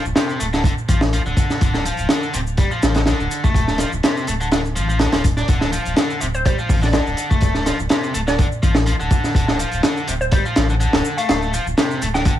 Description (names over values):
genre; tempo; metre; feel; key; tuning
breakbeat, breaks; 124 BPM; 4/4; swing 53% on 16ths; D minor; A4 = 440 Hz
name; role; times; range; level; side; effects
biting overdriven guitar; riff; 0.0-12.3 s; C3 to D4; -23 LUFS; left 1 dB; tape echo
saturated sub bass; bass; 0.1-12.3 s; D1 to A1; -22 LUFS; equal; none
shaker; drums; 0.1-12.4 s; none; -35 LUFS; left 2 dB; none
crunchy breakbeat drum kit; drums; 0.2-12.4 s; hi-hat, kick drum, snare drum; -18 LUFS; equal; none
hollow square pluck; melody; 6.3-12.4 s; C5 to G5; -27 LUFS; equal; chorus, telephone sound, tape echo
room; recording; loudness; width
moderate studio reverb, RT60 0.6 s; none; -16 LUFS; side -12 dB against mid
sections
0.0-12.4 A section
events
none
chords
0.0 Dm